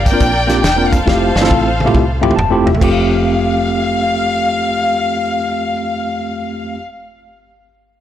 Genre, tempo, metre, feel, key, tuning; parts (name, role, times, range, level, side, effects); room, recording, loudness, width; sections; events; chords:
uptempo gospel; 138 BPM; 4/4; swing 66% on 8ths; F major; A4 = 440 Hz
warm studio string section; melody; 0.0-6.8 s; G4 to G5; -18 LUFS; left 2 dB
deep dub fingered electric bass; bass; 0.0-6.8 s; E1 to C2; -20 LUFS; equal; tube saturation
bright tine electric piano; accompaniment; 0.1-6.8 s; F2 to A5; -16 LUFS; equal; medium stereo tremolo
warm soul drum kit; drums; 0.1-2.9 s; crash cymbal, hi-hat, kick drum, snare drum, toms; -17 LUFS; equal
light reverb, studio reverb; blown-out, overdriven recording, overdrive, faint mains hum; -12 LUFS; side -11 dB against mid
0.0-2.8 A section; 2.8-6.3 B section
drum fill 1.1-2.8; tine electric piano fill 2.2-2.8
0.0 C9sus4; 1.1 Fmaj9; 2.8 Fadd9